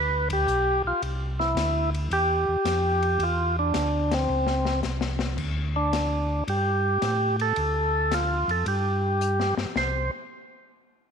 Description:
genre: soul jazz organ trio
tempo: 110 BPM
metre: 4/4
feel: swing 68% on 8ths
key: C major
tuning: A4 = 440 Hz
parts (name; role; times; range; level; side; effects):
- percussive tonewheel organ; melody; 0.0-10.1 s; C4 to C5; -25 LUFS; right 1 dB; slow rotary speaker
- mellow tonewheel organ; bass; 0.0-10.1 s; B1 to A2; -27 LUFS; equal; slow rotary speaker
- open jazz drum kit; drums; 0.3-9.9 s; crash cymbal, hi-hat, kick drum, ride cymbal, snare drum; -34 LUFS; left 6 dB; none
room: moderate echo chamber reverb, RT60 1.8 s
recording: 1960s-style stereo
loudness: -22 LUFS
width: side -6 dB against mid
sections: 0.0-5.4 A section; 5.4-9.8 B section; 9.8-11.1 C section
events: band accent 0.2, 4.0; drum fill 4.3-5.4, 9.2-9.8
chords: 0.0 G; 1.0 C; 3.2 Dm9; 4.3 N.C.; 6.5 Gsus2; 7.6 Dm; 8.7 N.C.

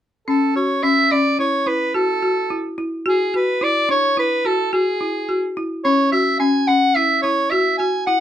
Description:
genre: progressive instrumental, progressive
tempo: 108 BPM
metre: 5/4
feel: straight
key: F# minor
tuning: A4 = 439 Hz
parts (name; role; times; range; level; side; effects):
- clear soprano saxophone; melody; 0.3-8.2 s; G#4 to G#5; -18 LUFS; right 1 dB; none
- folk marimba with hard mallets; arpeggios; 0.3-8.2 s; C#4 to F#4; -20 LUFS; left 2 dB; none
room: wet small room reverb, RT60 0.5 s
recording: none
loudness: -16 LUFS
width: side -11 dB against mid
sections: 0.3-8.2 A section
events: none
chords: 0.3 F#m7; 3.1 Dadd9(#11) (rootless); 5.8 F#5

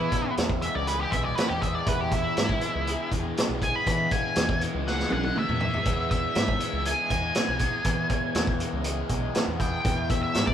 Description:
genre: psychedelic rock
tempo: 120 BPM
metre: 4/4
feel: straight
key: E major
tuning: A4 = 438 Hz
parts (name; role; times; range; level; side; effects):
- octave-fuzz lead guitar; melody; 0.0-10.5 s; E4 to B5; -29 LUFS; equal; wah, distortion
- mellow tonewheel organ; sustained chords; 0.0-10.5 s; E3 to G#4; -40 LUFS; right 4 dB; slow rotary speaker, chorus vibrato
- raw garage guitar; riff; 0.0-10.5 s; E2 to G#4; -31 LUFS; left 2 dB; overdrive, phaser
- growling fingered electric bass; bass; 0.0-10.5 s; B1 to E3; -32 LUFS; equal; overdrive
- vintage drum kit; drums; 0.1-10.5 s; hi-hat, kick drum, snare drum, toms; -28 LUFS; equal; none
room: light reverb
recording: band playing live in one room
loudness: -24 LUFS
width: side -9 dB against mid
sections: 0.0-10.5 A section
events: lead electric guitar solo 0.0-10.5; drum fill 4.9-5.9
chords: 0.0 E

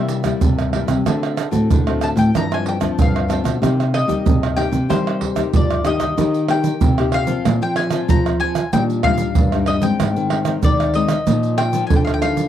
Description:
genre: samba and choro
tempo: 94 BPM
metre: 4/4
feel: straight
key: C minor, Eb major from 6.2 s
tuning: A4 = 439 Hz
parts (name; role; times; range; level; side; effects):
- mandolin; melody; 0.0-12.5 s; C5 to Bb5; -23 LUFS; left 4 dB; none
- nylon-string guitar; accompaniment; 0.0-12.5 s; G2 to G4; -23 LUFS; left 8 dB; none
- nylon-string guitar; bass; 0.0-12.4 s; G2 to G3; -20 LUFS; equal; none
- egg shaker, pandeiro, surdo and tamborim; percussion; 0.1-12.5 s; none; -19 LUFS; right 4 dB; none
room: light reverb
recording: dry, close 1970s-style studio recording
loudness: -15 LUFS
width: side -10 dB against mid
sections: 0.0-6.2 A section; 6.2-12.5 B section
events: none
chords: 0.0 C7; 1.1 D7; 2.3 G7sus4; 3.6 Cm7; 6.2 Eb; 7.5 Bbsus2; 8.7 Ebmaj7/Bb; 10.0 Ab; 11.3 Bbsus4

